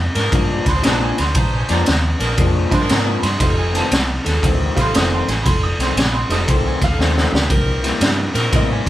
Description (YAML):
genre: electric blues shuffle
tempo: 117 BPM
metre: 4/4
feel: swing 66% on 8ths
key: F mixolydian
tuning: A4 = 439 Hz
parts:
  - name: bright upright piano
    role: accompaniment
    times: 0.0-8.9 s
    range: F3 to Eb6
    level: -24 LUFS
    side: right 3 dB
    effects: none
  - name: vintage muted fingered electric bass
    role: bass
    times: 0.0-8.9 s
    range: F1 to Bb2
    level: -20 LUFS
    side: equal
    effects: none
  - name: bright saxophone section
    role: stabs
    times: 0.1-8.7 s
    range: C4 to C5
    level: -26 LUFS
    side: right 1 dB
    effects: none
  - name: electric guitar through a small old amp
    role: riff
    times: 0.2-8.9 s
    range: F2 to E4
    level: -24 LUFS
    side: left 4 dB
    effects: none
  - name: raw garage drum kit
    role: drums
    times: 0.2-8.9 s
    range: kick drum, ride cymbal, snare drum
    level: -17 LUFS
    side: equal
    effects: none
room: moderate studio reverb, RT60 0.5 s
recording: band playing live in one room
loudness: -14 LUFS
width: side -14 dB against mid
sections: 0.0-8.9 A section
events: drum fill 7.0-7.5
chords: 0.0 Bb7; 3.4 F7; 7.5 C7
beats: 0.32 0.83 | 1.35 1.86 2.37 2.89 | 3.40 3.91 4.42 4.94 | 5.45 5.96 6.48 6.99 | 7.50 8.01 8.53